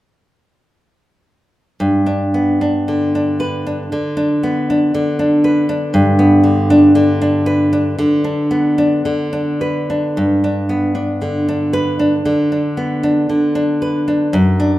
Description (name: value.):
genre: romantic piece for solo classical guitar.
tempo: 57 BPM.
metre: 4/4.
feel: uneven beats, rubato.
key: G major.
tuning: A4 = 443 Hz.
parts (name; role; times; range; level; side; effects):
nylon-string guitar; solo; 1.8-14.8 s; F#2 to B4; -13 LUFS; equal; none.
room: wet recital hall reverb, RT60 1.6 s.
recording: minimal, uncompressed stereo recording.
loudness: -13 LUFS.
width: side -15 dB against mid.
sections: 1.8-10.2 A section; 10.2-14.8 B section.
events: none.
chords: 1.8 G.